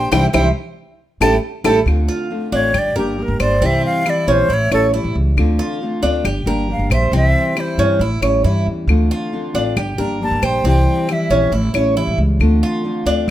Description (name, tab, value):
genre	latin, Cuban son and guajira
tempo	137 BPM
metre	4/4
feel	straight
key	D minor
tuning	A4 = 442 Hz
part	breathy concert flute	melody	0.0-11.5 s	G4 to A5	-20 LUFS	equal	none
part	nylon-string guitar	accompaniment	0.0-13.3 s	C3 to G4	-21 LUFS	left 2 dB	none
part	Cuban tres	arpeggios	0.0-13.3 s	C4 to C#5	-20 LUFS	right 2 dB	none
part	upright bass	bass	0.0-13.3 s	G1 to G2	-17 LUFS	equal	none
part	bongos	percussion	0.1-1.7 s	none	-23 LUFS	left 6 dB	none
part	claves	percussion	0.1-12.6 s	none	-25 LUFS	left 6 dB	none
room	light reverb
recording	none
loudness	-14 LUFS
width	side -13 dB against mid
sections	0.0-1.9 A section; 1.9-13.3 B section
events	band accent 0.1-1.9; flute solo 1.9-13.3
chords	0.1 C; 1.0 A7; 1.9 Dm7; 2.7 Gm; 3.6 C; 4.5 A7; 5.4 Dm7; 6.2 Gm; 7.1 C; 8.0 A7; 8.9 Dm7; 9.8 Gm; 10.6 C; 11.5 A7; 12.4 Dm7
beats	| 0.12 0.55 0.99 1.43 | 1.87 2.30 2.74 3.18 | 3.62 4.06 4.50 4.93 | 5.37 5.81 6.25 6.69 | 7.13 7.57 8.01 8.45 | 8.88 9.32 9.77 10.21 | 10.64 11.09 11.53 11.96 | 12.41 12.85 13.29